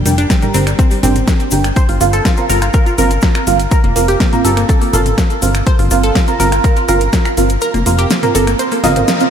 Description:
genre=progressive house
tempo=123 BPM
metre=4/4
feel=straight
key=unclear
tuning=A4 = 440 Hz
part: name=wide unison pluck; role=arpeggios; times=0.0-9.3 s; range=G3 to Eb5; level=-18 LUFS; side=equal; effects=sidechain pumping, diffuse ambient delay
part: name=plucky analog bass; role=bass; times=0.0-9.0 s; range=F1 to G1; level=-15 LUFS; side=left 1 dB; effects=tube saturation, sidechain pumping
part: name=deep mellow chord stab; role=stabs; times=0.1-9.3 s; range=C4 to Bb5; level=-16 LUFS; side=right 4 dB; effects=chorus, phaser, sidechain pumping, diffuse ambient delay
part: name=pop drum kit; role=drums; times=0.1-9.3 s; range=finger snaps, hi-hat, snare drum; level=-21 LUFS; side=equal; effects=overdrive, sidechain pumping on hats
part: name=cabasa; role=percussion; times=0.1-9.3 s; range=none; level=-26 LUFS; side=left 8 dB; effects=none
part: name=electronic kick drum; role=drums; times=0.3-7.2 s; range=none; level=-13 LUFS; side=left 1 dB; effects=overdrive
part: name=electronic toms and congas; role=percussion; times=0.4-9.1 s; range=none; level=-25 LUFS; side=right 2 dB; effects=overdrive, sidechain pumping on toms, sidechain pumping on perc
room=moderate huge ambient reverb, RT60 4.7 s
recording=dreamy mix soaked in reverb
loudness=-10 LUFS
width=side -8 dB against mid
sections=0.0-9.3 A section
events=kick drops out 7.6-9.3; band accent 9.1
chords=0.0 Gm; 1.8 Bbsus2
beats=0.30 0.79 1.28 | 1.76 2.25 2.74 3.23 | 3.71 4.20 4.69 5.18 | 5.67 6.15 6.64 7.13 | 7.62 8.11 8.59 9.08

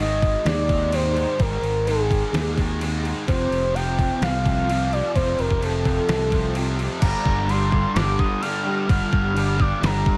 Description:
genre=rock, shoegaze and dream pop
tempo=128 BPM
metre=4/4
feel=straight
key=G minor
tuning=A4 = 440 Hz
part: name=reedy FM lead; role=melody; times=0.0-10.2 s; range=Ab4 to F6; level=-27 LUFS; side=equal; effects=chorus, digital delay
part: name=fuzz guitar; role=riff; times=0.0-10.2 s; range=F2 to Ab3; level=-28 LUFS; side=equal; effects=distortion, ensemble chorus
part: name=fingered electric bass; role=bass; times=0.0-10.0 s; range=F1 to Eb2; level=-27 LUFS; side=equal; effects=none
part: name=detuned 8-bit digital drum machine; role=drums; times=0.2-10.2 s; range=crash cymbal, kick drum, snare drum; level=-28 LUFS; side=equal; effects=overdrive
room=light reverb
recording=none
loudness=-22 LUFS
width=mono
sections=0.0-7.0 A section; 7.0-10.2 B section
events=none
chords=0.0 Ab5; 3.3 F; 7.0 Gm7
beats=0.46 0.93 | 1.40 1.87 2.34 2.81 | 3.28 3.75 4.21 4.68 | 5.15 5.62 6.09 6.56 | 7.03 7.49 7.96 8.43 | 8.89 9.36 9.83

